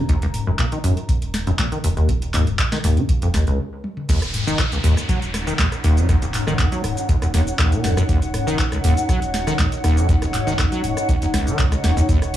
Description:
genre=acid house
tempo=120 BPM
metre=4/4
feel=straight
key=Eb minor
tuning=A4 = 440 Hz
part: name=dark analog pad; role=sustained chords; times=0.0-12.4 s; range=Eb4 to Bb5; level=-30 LUFS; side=equal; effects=chorus, sidechain pumping
part: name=acid bass, saw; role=riff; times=0.0-12.2 s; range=Db2 to Gb3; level=-20 LUFS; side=equal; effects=tube saturation, analog chorus, sidechain pumping, tape echo
part: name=warm sub bass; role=bass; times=0.1-12.4 s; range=Eb1 to Db2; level=-27 LUFS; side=equal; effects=tube saturation, sidechain pumping
part: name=booming analog drum machine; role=drums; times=0.1-12.4 s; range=crash cymbal, handclaps, hi-hat, rim click, shaker, snare drum, toms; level=-25 LUFS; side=left 1 dB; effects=none
part: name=electronic kick drum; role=drums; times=0.1-12.2 s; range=none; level=-21 LUFS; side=equal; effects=none
part: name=downlifter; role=sound effects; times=4.1-8.1 s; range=none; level=-31 LUFS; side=equal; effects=none
part: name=granular cloud pad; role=texture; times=5.4-12.4 s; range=Eb4 to Gb5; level=-28 LUFS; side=equal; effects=built-in reverb, sidechain pumping
room=light reverb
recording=small room ambience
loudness=-17 LUFS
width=side -12 dB against mid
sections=0.0-4.1 A section; 4.1-12.4 B section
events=filter sweep on acid bass 0.0-4.1; stop 3.6-4.1; drum fill 3.8; drop 4.1-12.4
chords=0.0 Eb7(no3); 4.1 Ebm7

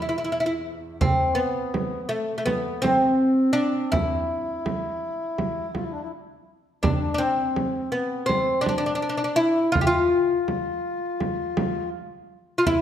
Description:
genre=Arabic maqam ensemble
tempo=82 BPM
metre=4/4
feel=straight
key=unclear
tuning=A4 = 442 Hz
part: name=oud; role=melody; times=0.0-12.8 s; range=A3 to G4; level=-22 LUFS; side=equal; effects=none
part: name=bright double bass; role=drone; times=0.0-1.1 s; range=E2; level=-43 LUFS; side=equal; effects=none
part: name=mellow accordion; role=second line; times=1.0-12.8 s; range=A3 to F4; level=-30 LUFS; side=left 4 dB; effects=none
part: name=frame drum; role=percussion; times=1.0-12.8 s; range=none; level=-27 LUFS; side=right 2 dB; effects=none
room=wet recital hall reverb, RT60 1.4 s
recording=none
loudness=-22 LUFS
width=side -10 dB against mid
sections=0.0-1.0 A section; 1.0-12.8 B section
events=none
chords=none

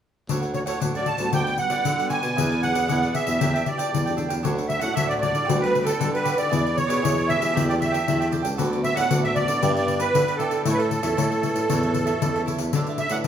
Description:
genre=samba and choro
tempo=116 BPM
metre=4/4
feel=straight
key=D major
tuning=A4 = 441 Hz
part: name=cavaquinho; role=accompaniment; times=0.3-13.3 s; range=D4 to G5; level=-31 LUFS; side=right 6 dB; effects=none
part: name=nylon-string guitar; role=accompaniment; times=0.3-13.3 s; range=G2 to G#4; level=-33 LUFS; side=left 3 dB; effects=none
part: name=breathy baritone saxophone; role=bass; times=0.3-13.3 s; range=C#2 to E3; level=-26 LUFS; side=equal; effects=none
part: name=pandeiro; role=percussion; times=0.3-13.3 s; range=none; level=-27 LUFS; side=left 5 dB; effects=none
part: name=musette accordion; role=melody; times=0.5-13.2 s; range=A4 to A5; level=-24 LUFS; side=right 2 dB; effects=none
room=wet large studio reverb, RT60 0.9 s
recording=band playing live in one room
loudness=-20 LUFS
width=side -9 dB against mid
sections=0.3-4.4 A section; 4.4-13.3 B section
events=none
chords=0.3 Dmaj7; 1.3 Gmaj7/D; 2.4 E7; 3.4 A7sus4/E; 4.4 Dmaj7; 5.5 Gmaj7/D; 6.5 E7; 7.5 A7sus4/E; 8.6 D6; 9.6 G6; 10.7 A; 12.7 Dsus2

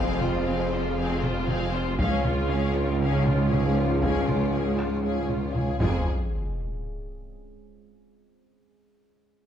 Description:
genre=cinematic, hybrid orchestral and electronic film score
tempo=118 BPM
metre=4/4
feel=straight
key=unclear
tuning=A4 = 440 Hz
part: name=warm symphonic violin section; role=melody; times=0.0-6.1 s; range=C5 to F5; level=-35 LUFS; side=left 5 dB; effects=low-pass filter
part: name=warm symphonic violin section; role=second line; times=0.0-6.1 s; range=F4 to Ab4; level=-36 LUFS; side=left 4 dB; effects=none
part: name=rich symphonic viola section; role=accompaniment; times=0.0-6.1 s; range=C4 to F4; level=-34 LUFS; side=left 1 dB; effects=low-pass filter
part: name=dark French horn section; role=sustained chords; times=0.0-6.0 s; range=Ab3 to Db4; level=-33 LUFS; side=left 6 dB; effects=low-pass filter
part: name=mellow trombone section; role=sustained chords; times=0.0-6.0 s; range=F2 to F3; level=-36 LUFS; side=right 4 dB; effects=none
part: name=metallic inharmonic drone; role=sustained chords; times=0.0-6.1 s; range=Ab3 to Ab4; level=-36 LUFS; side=right 1 dB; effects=chorus, built-in reverb, low-pass filter
part: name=clear studio cello section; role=bass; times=0.0-6.1 s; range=Db2 to F2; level=-32 LUFS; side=right 2 dB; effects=none
part: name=mellow tuba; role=bass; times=0.0-6.0 s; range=F1 to Db2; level=-31 LUFS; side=right 3 dB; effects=none
part: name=rich studio double bass section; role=bass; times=0.0-6.1 s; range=F1 to Db2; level=-31 LUFS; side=right 4 dB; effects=none
part: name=sub bass with octave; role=bass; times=0.0-6.1 s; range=F1 to Db2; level=-33 LUFS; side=left 1 dB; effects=none
part: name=taiko ensemble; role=drums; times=0.2-6.8 s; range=none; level=-31 LUFS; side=equal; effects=none
part: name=sub drop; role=sound effects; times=5.8-7.8 s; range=none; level=-30 LUFS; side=left 1 dB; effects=none
room=moderate scoring stage reverb, RT60 1.6 s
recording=dark, warm production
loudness=-23 LUFS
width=side -9 dB against mid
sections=0.0-6.1 A section; 6.1-8.1 B section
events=filter sweep 0.0-6.1; impact 6.1-8.1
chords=0.0 Fm; 2.0 Db; 5.8 Fm; 6.1 N.C.

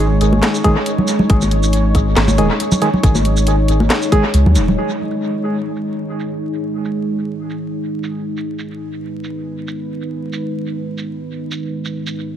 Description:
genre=deep dubstep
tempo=138 BPM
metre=4/4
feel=swing 55% on 16ths, half-time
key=G# minor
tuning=A4 = 441 Hz
part: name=deep dark ambient pad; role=sustained chords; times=0.0-12.4 s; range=G#3 to C#5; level=-20 LUFS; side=equal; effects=chorus, built-in reverb
part: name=percussive organ stab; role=stabs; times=0.0-4.2 s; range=D#3 to G#4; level=-21 LUFS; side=right 1 dB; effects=chorus, phaser, dub echo
part: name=soft dub sub bass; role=bass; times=0.0-4.8 s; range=D#1 to D#2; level=-15 LUFS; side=equal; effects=none
part: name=garage drum kit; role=drums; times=0.2-12.1 s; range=handclaps, hi-hat, shaker, snare drum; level=-22 LUFS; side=equal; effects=low-pass filter on hats, low-pass filter on perc, low-pass filter on snare, dub echo
part: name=congas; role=percussion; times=0.3-4.8 s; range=none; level=-20 LUFS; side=equal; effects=dub echo
part: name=electronic kick drum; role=drums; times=0.6-4.2 s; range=none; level=-14 LUFS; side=equal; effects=none
room=light reverb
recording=echo-heavy mix, vinyl crackle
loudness=-15 LUFS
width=side -10 dB against mid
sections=0.0-4.8 A section; 4.8-12.4 B section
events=filter sweep on drum 4.8-12.4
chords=0.0 G#5

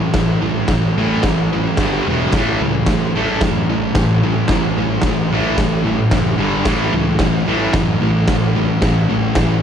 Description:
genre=garage rock duo or trio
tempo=110 BPM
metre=4/4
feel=straight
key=unclear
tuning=A4 = 440 Hz
part: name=thick fuzz guitar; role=riff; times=0.0-9.6 s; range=E2 to A3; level=-16 LUFS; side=equal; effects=distortion
part: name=fuzz picked electric bass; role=bass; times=0.1-9.6 s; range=E1 to F#2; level=-23 LUFS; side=equal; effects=overdrive
part: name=oversized low-tuned drum kit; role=drums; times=0.1-9.5 s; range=crash cymbal, kick drum, snare drum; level=-19 LUFS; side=equal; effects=none
room=light reverb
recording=cassette tape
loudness=-14 LUFS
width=side -8 dB against mid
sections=0.0-9.6 A section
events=none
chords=0.0 A5; 1.8 G5; 2.1 E5; 2.3 A5; 6.4 G5; 6.7 A5

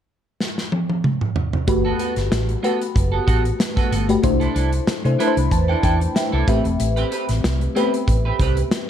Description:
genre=polished 1980s jazz-funk pop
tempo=94 BPM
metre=4/4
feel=swing 54% on 16ths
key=G major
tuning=A4 = 439 Hz
part: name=modern studio drum kit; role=drums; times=0.4-8.9 s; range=hi-hat, kick drum, snare drum, toms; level=-22 LUFS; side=equal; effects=none
part: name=bell-like FM electric piano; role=accompaniment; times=1.7-8.9 s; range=A3 to B5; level=-22 LUFS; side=left 2 dB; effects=phaser, analog chorus
part: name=clean electric guitar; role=riff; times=1.7-8.6 s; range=B3 to B4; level=-27 LUFS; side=right 6 dB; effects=analog chorus
part: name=hollow-body short-scale fingered electric bass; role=bass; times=1.7-8.6 s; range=E1 to C3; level=-21 LUFS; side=equal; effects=none
room=light reverb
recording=dark, warm production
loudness=-17 LUFS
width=side -9 dB against mid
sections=0.0-1.7 A section; 1.7-8.9 B section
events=drum fill 0.4-1.7; FM electric piano fill 4.9-6.8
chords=0.0 N.C.; 1.7 Gmaj9; 4.2 C69; 6.5 Am9

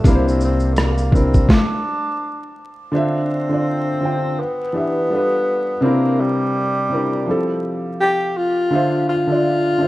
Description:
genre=lo-fi hip hop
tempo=83 BPM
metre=4/4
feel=swing 58% on 16ths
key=D minor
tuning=A4 = 442 Hz
part: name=breathy tenor saxophone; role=melody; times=0.0-9.9 s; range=G3 to G4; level=-21 LUFS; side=equal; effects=none
part: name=felt-muted upright piano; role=accompaniment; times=0.0-9.9 s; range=C3 to G5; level=-19 LUFS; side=equal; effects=none
part: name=upright bass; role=bass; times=0.0-1.4 s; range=C2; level=-19 LUFS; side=equal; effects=none
part: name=boom bap sampler-style drum kit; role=drums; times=0.0-1.7 s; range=hi-hat, kick drum, rim click, shaker, snare drum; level=-15 LUFS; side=equal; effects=vintage 12-bit sampler grit
room=light reverb, small room reverb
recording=rough home demo mix, vinyl crackle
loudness=-16 LUFS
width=side -17 dB against mid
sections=0.0-2.9 A section; 2.9-9.9 B section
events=stop 1.5-2.9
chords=0.0 C7; 1.5 N.C.; 2.9 Dm7; 4.4 Em7; 5.1 G7; 5.8 C7; 7.3 Fmaj7; 8.7 Dm7

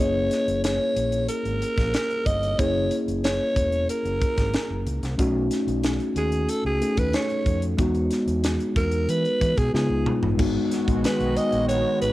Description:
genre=polished 1980s jazz-funk pop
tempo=92 BPM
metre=4/4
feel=straight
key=unclear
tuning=A4 = 439 Hz
part: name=growling alto saxophone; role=melody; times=0.0-12.1 s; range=G#4 to D#5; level=-26 LUFS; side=equal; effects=cassette tape
part: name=mellow tine electric piano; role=accompaniment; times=0.0-12.1 s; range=G#3 to A4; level=-26 LUFS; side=left 1 dB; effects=wide subtle chorus, cassette tape
part: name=overdriven fingered electric bass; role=bass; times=0.0-12.1 s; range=E1 to E3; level=-28 LUFS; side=equal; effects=none
part: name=crisp fusion drum kit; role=drums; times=0.3-12.1 s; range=crash cymbal, hi-hat, kick drum, snare drum, toms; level=-27 LUFS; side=equal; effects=cassette tape
part: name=lush unison pad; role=sustained chords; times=10.4-12.1 s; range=D#3 to F#4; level=-30 LUFS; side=equal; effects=chorus, phaser, cassette tape
room=light reverb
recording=home recording on cassette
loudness=-21 LUFS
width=side -16 dB against mid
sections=0.0-10.4 A section; 10.4-12.1 B section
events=drum fill 9.7-10.4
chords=0.0 F#7; 5.2 B7; 7.8 Emaj7; 9.7 C#7; 10.4 G#m7

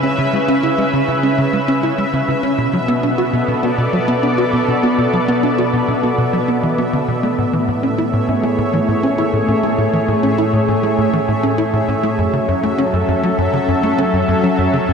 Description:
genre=ambient, sequencer-driven space music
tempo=100 BPM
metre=4/4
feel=straight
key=A major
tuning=A4 = 438 Hz
part: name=lush unison pad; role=sustained chords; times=0.0-14.9 s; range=A2 to E5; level=-16 LUFS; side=equal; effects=chorus, shimmer reverb
part: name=tight sequencer bass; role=riff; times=0.0-14.9 s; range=F#2 to F#4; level=-18 LUFS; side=equal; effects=wide subtle chorus, tape echo
part: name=bubbling stepped-filter texture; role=texture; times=0.0-14.9 s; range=E5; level=-26 LUFS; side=equal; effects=chorus, built-in reverb, shimmer reverb
room=wet huge ambient reverb, RT60 8.6 s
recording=dark, warm production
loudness=-14 LUFS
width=side -6 dB against mid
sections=0.0-14.9 A section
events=none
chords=0.0 C#m7; 2.6 Bm7; 7.4 Amaj7; 12.2 F#m7

